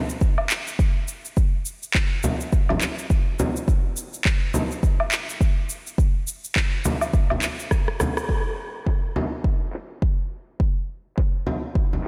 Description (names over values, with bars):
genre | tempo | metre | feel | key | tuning
downtempo | 104 BPM | 4/4 | swing 59% on 16ths | none | none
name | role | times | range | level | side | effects
electronic shaker, woodblock, handclaps and rim click | drums | 0.1-12.1 s | none | -30 LUFS | equal | low-pass filter on perc, studio reverb, low-pass filter on snare
electronic kick drum | drums | 0.2-11.9 s | none | -23 LUFS | equal | studio reverb
frame drum | percussion | 2.2-12.0 s | none | -30 LUFS | equal | none
room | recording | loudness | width
light reverb, digital ambience | none | -24 LUFS | mono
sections
0.0-8.3 A section; 8.3-12.1 B section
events
drum fill 7.7-8.3; band accent 8.1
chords
none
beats
0.21 0.79 | 1.37 1.95 2.52 3.10 | 3.68 4.25 4.83 5.41 | 5.98 6.56 7.14 7.71 | 8.29 8.87 9.45 10.02 | 10.60 11.18 11.75